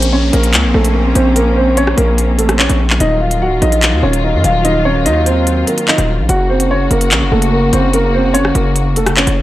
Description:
hip hop, drill; 146 BPM; 4/4; half-time; Bb harmonic minor; A4 = 440 Hz
dark baby grand piano; melody; 0.0-9.4 s; A3 to Gb5; -15 LUFS; right 1 dB; tape echo
muted studio string section; sustained chords; 0.0-9.4 s; Db3 to Gb4; -18 LUFS; left 1 dB
distorted 808-style bass; bass; 0.0-9.4 s; Db1 to Gb2; -14 LUFS; equal; distortion
drill drum kit; drums; 0.0-9.4 s; handclaps, hi-hat, rim click; -16 LUFS; equal
downlifter; sound effects; 0.0-3.0 s; -27 LUFS; left 2 dB
digital ambience; dry, gritty hardware recording, cassette tape; -10 LUFS; side -15 dB against mid
0.0-9.4 A section
0.0 Bbmadd9; 3.0 Ebmadd9; 6.3 Gb

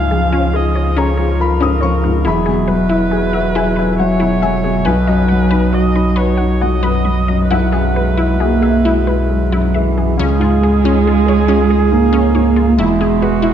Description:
neoclassical piano and strings; 69 BPM; 3/4; rubato; A4 = 441 Hz
muted cello; second line; 0.0-13.5 s; E3 to A#3; -17 LUFS; right 5 dB
felt-muted upright piano; accompaniment; 0.0-13.5 s; B1 to D#6; -18 LUFS; left 3 dB
muted viola; accompaniment; 0.0-13.5 s; E4 to E#5; -22 LUFS; right 4 dB
pedal harmonium; sustained chords; 0.0-13.5 s; F#3 to E#5; -26 LUFS; right 1 dB
resonant blip pluck; arpeggios; 0.0-13.5 s; C#4 to B5; -22 LUFS; left 4 dB; chorus, slapback echo
sub bass with octave; bass; 0.0-13.5 s; E1 to C#2; -18 LUFS; left 1 dB
moderate scoring stage reverb, RT60 1.6 s; dark, warm production; -12 LUFS; side -9 dB against mid
0.0-10.2 A section; 10.2-13.5 B section
0.0 C#; 2.3 Eadd9; 4.9 B; 7.5 Eadd9/B; 10.2 C#; 12.8 Eadd9

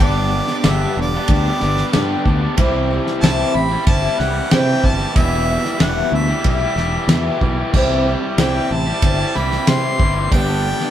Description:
folk rock and heartland rock; 93 BPM; 4/4; straight; A4 = 440 Hz
warm harmonica; melody; 0.0-10.9 s; D5 to C6; -23 LUFS; right 2 dB
picked twelve-string acoustic guitar; accompaniment; 0.0-10.9 s; E2 to G4; -23 LUFS; left 3 dB
clear studio string section; sustained chords; 0.0-10.9 s; B3 to G4; -32 LUFS; right 2 dB
raw garage guitar; riff; 0.0-10.9 s; E2 to G4; -22 LUFS; equal; overdrive
fingered electric bass; bass; 0.0-10.7 s; E1 to C3; -21 LUFS; equal
damped 70s drum kit; drums; 0.5-10.9 s; crash cymbal, kick drum, ride cymbal, snare drum; -18 LUFS; equal
moderate studio reverb, RT60 0.7 s; band playing live in one room; -14 LUFS; side -11 dB against mid
0.0-10.9 A section
0.0 G; 2.6 C; 5.2 Em; 7.7 C; 10.3 G

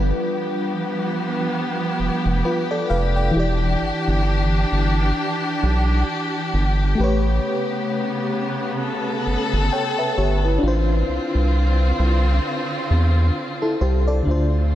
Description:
R&B; 66 BPM; 4/4; swing 58% on 16ths; D dorian; A4 = 437 Hz
FM electric piano with tremolo; accompaniment; 0.0-14.8 s; D3 to G5; -24 LUFS; left 2 dB
warm chamber string section; sustained chords; 0.0-14.8 s; C#3 to A4; -24 LUFS; right 1 dB
round analog bass; bass; 0.0-14.8 s; E1 to E2; -18 LUFS; equal
moderate lush hall reverb, RT60 2.6 s; dreamy mix soaked in reverb; -18 LUFS; side -12 dB against mid
0.0-14.3 A section
0.0 G7; 3.4 Em7; 7.0 A9; 10.6 Dm7/A

